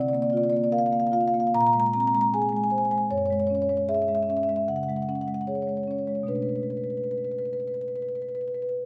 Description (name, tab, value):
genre	classical, contemporary piece for solo marimba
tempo	72-79 BPM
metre	4/4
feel	rubato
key	unclear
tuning	A4 = 440 Hz
part	marimba with soft mallets	solo	0.0-8.9 s	F#2 to Bb5	-26 LUFS	equal	none
room	moderate recital hall reverb, RT60 1.6 s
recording	close, detailed microphones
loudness	-26 LUFS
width	mono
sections	0.0-8.9 A section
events	none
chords	0.0 C9sus4; 1.5 Bbsus2; 3.1 F#sus2; 6.3 Bm7